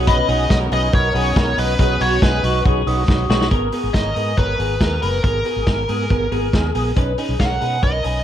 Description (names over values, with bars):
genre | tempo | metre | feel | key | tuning
jangly indie pop | 139 BPM | 4/4 | straight | unclear | A4 = 441 Hz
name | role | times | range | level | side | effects
overdriven combo organ | accompaniment | 0.0-8.2 s | B3 to D#5 | -25 LUFS | right 5 dB | phaser
warm analog pad | sustained chords | 0.0-3.5 s | B3 to D#4 | -29 LUFS | left 2 dB | chorus
twelve-string electric guitar | arpeggios | 0.0-8.2 s | F#4 to B4 | -24 LUFS | left 2 dB | analog chorus
vintage muted fingered electric bass | bass | 0.0-8.2 s | F#1 to B2 | -22 LUFS | equal | none
biting lead guitar | melody | 0.1-8.2 s | A#4 to F#5 | -23 LUFS | equal | overdrive, ping-pong delay
vintage drum kit | drums | 0.1-8.1 s | hi-hat, kick drum, snare drum | -20 LUFS | equal | none
glockenspiel with soft plastic mallets | second line | 2.7-3.5 s | C#6 to D#6 | -31 LUFS | left 3 dB | ping-pong delay
room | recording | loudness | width
light reverb | dark, warm production | -16 LUFS | side -10 dB against mid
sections
0.0-3.5 A section; 3.5-8.2 B section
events
drum fill 3.1-3.5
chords
0.0 Badd9; 3.5 G#madd9; 7.0 Badd9